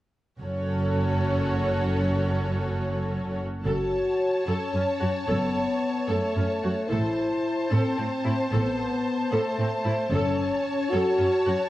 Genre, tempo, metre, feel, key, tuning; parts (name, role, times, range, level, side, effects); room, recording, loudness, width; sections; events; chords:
cinematic; 74 BPM (dotted quarters); 6/8; straight; F# minor; A4 = 443 Hz
warm symphonic violin section; second line; 0.4-11.7 s; A4 to C#5; -30 LUFS; left 1 dB
rich symphonic viola section; accompaniment; 0.4-11.5 s; C4 to A4; -33 LUFS; right 1 dB
warm symphonic cello section; bass; 0.4-11.6 s; F#2 to A2; -28 LUFS; right 1 dB
warm symphonic double bass section; bass; 0.4-10.4 s; F#1 to A1; -30 LUFS; right 2 dB
rich symphonic violin section; melody; 3.7-11.7 s; A5; -34 LUFS; equal
mellow French horn section; sustained chords; 3.7-11.6 s; A3 to F#4; -27 LUFS; left 2 dB
moderate scoring stage reverb, RT60 2.1 s; worn, warbling old tape, cassette tape, warbly pitch drift; -23 LUFS; side -15 dB against mid
0.4-3.7 A section; 3.7-11.7 B section
0.4 F#m; 6.9 Am; 10.1 F#m